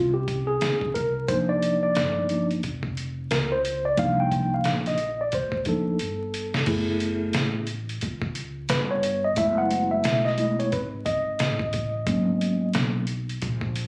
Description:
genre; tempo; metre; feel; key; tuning
hip hop, jazz-hop; 89 BPM; 4/4; swing 61% on 16ths; unclear; A4 = 440 Hz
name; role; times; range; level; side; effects
mellow tine electric piano; accompaniment; 0.0-13.0 s; F3 to G5; -26 LUFS; equal; plate reverb
upright bass; bass; 0.0-13.9 s; F1 to Eb2; -34 LUFS; equal; none
trip hop sampler-style drum kit; drums; 0.3-13.9 s; crash cymbal, hi-hat, kick drum, snare drum; -32 LUFS; equal; none
room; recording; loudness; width
moderate studio reverb, RT60 0.6 s; recorded on a phone in the room, studio ambience, vinyl crackle, compression; -25 LUFS; mono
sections
0.0-13.9 A section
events
tine electric piano solo 0.0-13.9; drum fill 6.0-6.7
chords
0.0 Bbm11 (rootless); 0.9 Cm11; 6.7 Gbm11; 12.1 Abm11

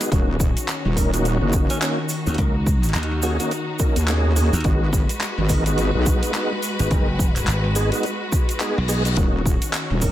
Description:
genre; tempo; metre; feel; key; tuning
glitch hop; 106 BPM; 4/4; swing 60% on 16ths; Eb minor; A4 = 438 Hz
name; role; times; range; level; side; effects
rich studio string section; sustained chords; 0.0-10.1 s; Eb3 to Cb5; -28 LUFS; left 1 dB; sidechain pumping
tonewheel organ; stabs; 0.0-10.1 s; Ab3 to Bb4; -26 LUFS; equal; chorus vibrato, fast rotary speaker, vintage 12-bit sampler grit, sidechain pumping, ping-pong delay
pop drum kit; drums; 0.0-10.1 s; handclaps, hi-hat, snare drum; -28 LUFS; equal; none
tube shaker; percussion; 0.0-10.1 s; none; -32 LUFS; right 3 dB; none
wobble bass; bass; 0.1-10.1 s; Eb1 to Eb2; -21 LUFS; equal; chorus
electronic kick drum; drums; 0.1-10.1 s; none; -20 LUFS; equal; none
breathy tenor saxophone; melody; 1.7-3.5 s; Db4 to Gb4; -32 LUFS; equal; vintage 12-bit sampler grit, ping-pong delay
slap bass; bass; 2.3-9.2 s; Gb1 to Eb2; -21 LUFS; equal; tube saturation
reverse cymbal; sound effects; 8.5-9.2 s; none; -33 LUFS; left 7 dB; none
room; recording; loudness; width
light reverb; none; -18 LUFS; side -13 dB against mid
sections
0.0-10.1 A section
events
reverse cymbal 8.5-9.2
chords
0.1 Ebm7; 4.6 Abm7; 9.2 Ebm7

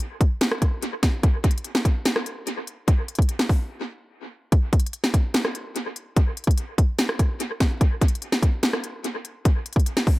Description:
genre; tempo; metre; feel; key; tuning
hip hop; 146 BPM; 4/4; half-time; none; none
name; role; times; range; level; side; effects
trap drum kit; drums; 0.0-10.2 s; hi-hat, kick drum, rim click, snare drum; -20 LUFS; equal; dub echo
room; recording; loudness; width
light reverb; echo-heavy mix; -21 LUFS; side -19 dB against mid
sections
0.0-4.5 A section; 4.5-10.2 B section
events
break 3.7-4.5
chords
none

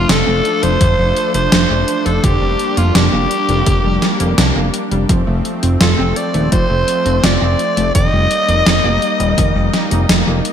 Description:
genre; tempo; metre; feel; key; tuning
synthwave; 84 BPM; 4/4; straight; F mixolydian; A4 = 440 Hz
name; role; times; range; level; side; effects
raspy alto saxophone; melody; 0.0-10.1 s; F4 to Eb5; -18 LUFS; equal; ping-pong delay, shimmer reverb
brassy analog pad; sustained chords; 0.0-10.5 s; F3 to Eb4; -22 LUFS; equal; chorus, sidechain pumping, shimmer reverb
analog pluck; arpeggios; 0.0-10.4 s; D3 to F4; -22 LUFS; equal; chorus, cassette tape, ping-pong delay, shimmer reverb
fat analog bass; bass; 0.0-10.4 s; Eb1 to C2; -17 LUFS; equal; none
gated 80s digital drum machine; drums; 0.1-10.5 s; hi-hat, snare drum; -16 LUFS; right 1 dB; gated reverb, gated reverb snare, overdrive
electronic kick drum; drums; 0.8-9.5 s; none; -17 LUFS; equal; overdrive
room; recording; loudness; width
moderate lush hall reverb, RT60 1.8 s; bright 1980s-style digital production; -12 LUFS; side -8 dB against mid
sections
0.0-10.5 A section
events
none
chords
0.0 Dm/F; 2.2 Gm/F; 5.1 F; 8.0 Eb

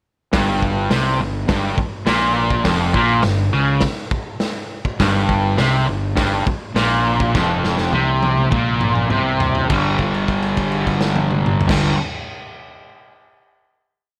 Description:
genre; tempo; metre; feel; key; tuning
garage rock duo or trio; 102 BPM; 4/4; straight; G minor; A4 = 440 Hz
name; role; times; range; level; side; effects
fuzz guitar; riff; 0.3-12.0 s; F2 to G3; -20 LUFS; equal; distortion
fuzz fingered electric bass; bass; 0.3-11.9 s; F1 to C#2; -27 LUFS; equal; overdrive
raw garage drum kit; drums; 0.3-11.8 s; crash cymbal, hi-hat, kick drum, snare drum, toms; -24 LUFS; equal; none
room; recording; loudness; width
light reverb, small room ambience; none; -18 LUFS; mono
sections
0.3-9.7 riff; 9.7-12.0 final chord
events
drum fill 7.3-9.7; held note 9.7-11.7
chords
0.3 Gm; 9.7 G5

